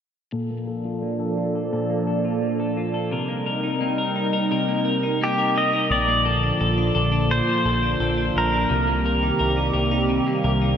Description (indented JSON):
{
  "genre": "dream pop",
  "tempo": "86 BPM",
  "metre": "4/4",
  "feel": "straight",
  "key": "Bb major",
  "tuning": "A4 = 439 Hz",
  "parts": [
    { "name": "hollow soft pad", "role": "sustained chords", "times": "0.7-10.8 s", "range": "D3 to Eb5", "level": "-24 LUFS", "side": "right 1 dB", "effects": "chorus, low-pass filter" },
    { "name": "clean electric guitar", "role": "arpeggios", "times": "0.3-10.8 s", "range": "Bb2 to Bb4", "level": "-25 LUFS", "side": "left 2 dB", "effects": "wide subtle chorus, low-pass filter, tape echo" },
    { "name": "pedal steel guitar", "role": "melody", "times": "5.2-9.7 s", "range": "G4 to Eb5", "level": "-23 LUFS", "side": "equal", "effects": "lush chorus, tape echo" },
    { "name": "fat analog bass", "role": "bass", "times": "5.9-10.7 s", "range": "Bb1 to C2", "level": "-24 LUFS", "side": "equal", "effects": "none" }
  ],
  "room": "wet lush hall reverb, RT60 3.0 s",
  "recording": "dreamy mix soaked in reverb",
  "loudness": "-20 LUFS",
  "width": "side -8 dB against mid",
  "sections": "0.3-5.9 A section; 5.9-10.8 B section",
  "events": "filter sweep 0.3-5.9",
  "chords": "0.3 Bbmaj7; 3.1 Cm7; 5.9 Bbmaj7; 8.7 Cm7"
}